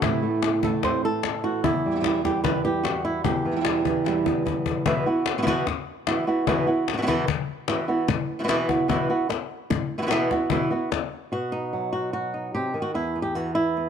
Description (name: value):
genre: flamenco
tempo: 149 BPM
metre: 4/4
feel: straight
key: E minor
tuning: A4 = 440 Hz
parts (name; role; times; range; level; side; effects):
- flamenco guitar; melody; 0.0-13.9 s; E2 to C5; -24 LUFS; right 1 dB; none
- flamenco guitar; stabs; 0.0-4.5 s; E2 to E4; -28 LUFS; right 12 dB; none
- cajon; percussion; 0.0-11.1 s; none; -28 LUFS; left 9 dB; none
room: light reverb, small room ambience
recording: 1960s-style stereo with parts hard left and right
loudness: -22 LUFS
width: side -7 dB against mid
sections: 0.0-4.9 A section; 4.9-11.3 B section; 11.3-13.9 C section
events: drum fill 4.1-4.9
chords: 0.0 Amadd9; 1.6 Em; 4.9 Esus2; 11.3 B; 12.9 E5